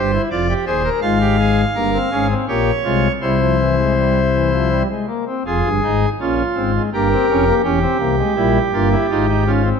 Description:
classical, baroque-style 4-part fugue for pipe organ; 82 BPM; 3/4; straight; F minor; A4 = 442 Hz
pipe organ, cornet; solo; 0.0-9.8 s; Eb1 to F5; -15 LUFS; left 1 dB
moderate scoring stage reverb, RT60 1.7 s; -15 LUFS; side -6 dB against mid
0.0-5.5 A section; 5.5-9.8 B section
0.3 Fm; 1.0 Fm/Ab; 2.5 Gm7b5/Bb; 3.2 C; 5.5 Fm; 6.9 Gm7b5; 7.6 Edim7; 9.1 Fm/Ab
0.32 | 1.03 1.75 2.48 | 3.22 3.97 4.72 | 5.46 6.19 6.91 | 7.63 8.35 9.09

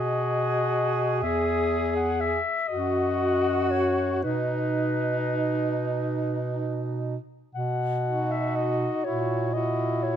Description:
classical, lyrical piece for single-reed quartet; 36-44 BPM (dotted quarters); 6/8; rubato; B major; A4 = 440 Hz
mellow clarinet; melody; 0.0-10.2 s; B4 to F#5; -29 LUFS; left 7 dB
bright alto saxophone; second line; 0.0-10.2 s; D#4 to G#4; -31 LUFS; right 8 dB
mellow tenor saxophone; accompaniment; 0.0-10.2 s; D#4 to G#4; -29 LUFS; left 2 dB
clear bass clarinet; bass; 0.0-10.2 s; E2 to B2; -29 LUFS; right 2 dB
light reverb; close, detailed microphones; -24 LUFS; side -9 dB against mid
0.0-7.5 A section; 7.5-10.2 B section
0.0 B; 1.2 E; 2.7 D#m7/F#; 4.2 B; 9.1 F#7/A#
| 1.23 2.69 | 4.24 5.90 | 7.55 9.05

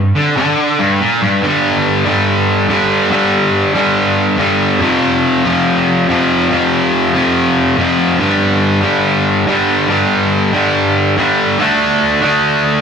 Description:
rock; 142 BPM; 4/4; straight; A4 = 440 Hz
distorted electric guitar; solo; 0.0-12.8 s; F2 to D4; -11 LUFS; equal; distortion, analog delay
wet studio reverb, RT60 0.8 s; faint mains hum; -11 LUFS; side -6 dB against mid
0.0-1.4 A section; 1.4-12.8 B section
0.0 Gm; 1.4 G5; 4.8 F5; 8.2 G5; 11.6 D5
0.15 0.58 1.00 | 1.42 1.84 2.27 2.69 | 3.11 3.54 3.96 4.38 | 4.81 5.23 5.65 6.08 | 6.50 6.93 7.35 7.78 | 8.20 8.62 9.05 9.47 | 9.90 10.32 10.75 11.17 | 11.59 12.02 12.44

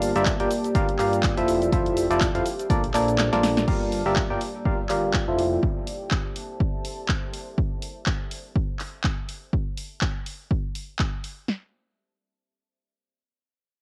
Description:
piano house; 123 BPM; 4/4; swing 56% on 16ths; G dorian; A4 = 440 Hz
barking FM electric piano; riff; 0.0-5.6 s; Bb2 to G5; -26 LUFS; equal; chorus, sidechain pumping, low-pass filter, cassette tape, tape echo
fat analog bass; bass; 0.0-5.6 s; F1 to G2; -33 LUFS; equal; sidechain pumping
house drum kit; drums; 0.0-11.3 s; crash cymbal, handclaps, hi-hat, shaker, snare drum; -32 LUFS; equal; cassette tape
deep dark ambient pad; texture; 0.0-7.6 s; Bb3 to A5; -35 LUFS; equal; chorus, built-in reverb, sidechain pumping, cassette tape
house drum kit; drums; 0.3-11.6 s; kick drum, snare drum; -28 LUFS; equal; cassette tape
light reverb, digital ambience; home recording on cassette; -25 LUFS; mono
0.0-3.7 A section; 3.7-11.5 B section; 11.5-13.8 C section
drop 0.0-3.7; kick drops out 3.2-3.7; drum fill 3.2-3.7; filter sweep on FM electric piano 3.7-5.6
0.0 Gm7; 1.5 Fmaj7; 2.7 Bbmaj7; 3.7 Gm7; 5.4 Fmaj7; 6.6 Bbmaj7; 7.6 N.C.
0.26 0.75 1.24 | 1.73 2.21 2.70 3.19 | 3.68 4.17 4.65 5.14 | 5.63 6.12 6.60 7.09 | 7.58 8.07 8.55 9.04 | 9.53 10.02 10.51 10.99 | 11.48

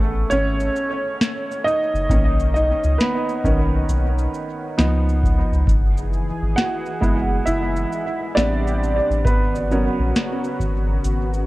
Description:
lo-fi hip hop; 67 BPM; 4/4; swing 65% on 16ths; A4 = 441 Hz
bright upright piano; accompaniment; 0.0-11.5 s; D#3 to F#5; -22 LUFS; right 2 dB; cassette tape, low-pass filter, tape echo
soft dub sub bass; bass; 0.0-11.4 s; F#1 to C#2; -21 LUFS; equal
booming analog drum machine; drums; 0.3-11.5 s; hi-hat, kick drum, shaker, snare drum; -22 LUFS; equal
lush unison pad; sustained chords; 5.7-11.5 s; C3 to G#4; -29 LUFS; left 1 dB; chorus, low-pass filter
light reverb; echo-heavy mix, cassette tape; -18 LUFS; side -18 dB against mid
0.0-11.5 A section
upright piano solo 0.0-11.5
0.0 Amaj9; 2.1 Bmaj9; 4.8 C#7; 5.7 F#9sus4; 8.4 Am11; 9.3 G#m11
0.30 1.20 | 2.09 2.99 3.88 4.78 | 5.67 6.57 7.46 8.36 | 9.25 10.15 11.04

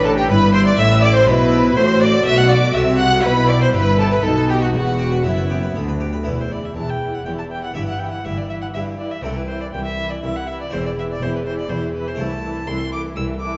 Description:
classical, baroque-style concerto movement with solo episodes; 122 BPM; 3/4; straight; E minor; A4 = 440 Hz
rich chamber violin section; melody; 0.0-13.6 s; G4 to F#6; -27 LUFS; equal
rich violin; melody; 0.0-13.6 s; E4 to E6; -26 LUFS; equal
warm studio violin section; second line; 0.0-13.6 s; E4 to F#5; -26 LUFS; equal
harpsichord; accompaniment; 0.0-13.6 s; C2 to B4; -30 LUFS; equal
warm studio viola section; accompaniment; 0.0-13.6 s; E3 to F#4; -27 LUFS; equal
warm chamber double bass section; bass; 0.0-13.6 s; E1 to D2; -25 LUFS; equal
warm symphonic cello section; bass; 0.0-13.6 s; C2 to C3; -25 LUFS; equal
wet recital hall reverb, RT60 1.8 s; nothing above 7.6 kHz; -18 LUFS; mono
0.0-6.3 A section; 6.3-13.6 B section
0.3 Em/G; 1.8 F#dim/A; 3.2 Em/B; 4.2 B7; 4.8 Em; 7.8 Em/G; 9.2 C; 10.7 C/E; 12.2 Am/C
| 0.30 0.79 1.28 | 1.77 2.26 2.75 | 3.24 3.74 4.24 | 4.75 5.26 5.77 | 6.28 6.78 7.27 | 7.77 8.26 8.76 | 9.25 9.74 10.24 | 10.73 11.22 11.71 | 12.20 12.69 13.18

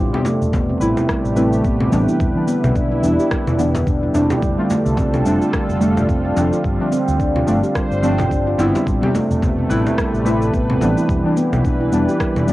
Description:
organic downtempo; 108 BPM; 4/4; swing 58% on 16ths; A4 = 440 Hz
deep mellow chord stab; accompaniment; 0.0-12.5 s; E3 to B4; -21 LUFS; equal; chorus, sidechain pumping, analog delay
warm analog pad; sustained chords; 0.0-12.5 s; C3 to D5; -24 LUFS; right 1 dB; lush chorus, sidechain pumping
handpan; arpeggios; 0.0-12.5 s; G3 to G4; -20 LUFS; equal; analog delay
mellow fretless electric bass; bass; 0.0-12.5 s; E1 to D2; -22 LUFS; equal; sidechain pumping
electronic congas, cabasa and rim click; drums; 0.1-12.5 s; -25 LUFS; equal; overdrive, cassette tape
frame drum; percussion; 0.2-10.9 s; -29 LUFS; left 1 dB
electronic kick drum; drums; 0.5-12.3 s; -22 LUFS; equal; cassette tape
moderate booth ambience, RT60 0.2 s; home recording on cassette; -15 LUFS; side -17 dB against mid
0.0-12.5 A section
0.0 Em7; 4.4 F69; 6.6 G7sus4; 8.9 Em7
0.54 1.09 1.65 | 2.20 2.76 3.31 3.87 | 4.42 4.98 5.54 6.09 | 6.65 7.20 7.76 8.31 | 8.87 9.42 9.98 10.54 | 11.09 11.65 12.20

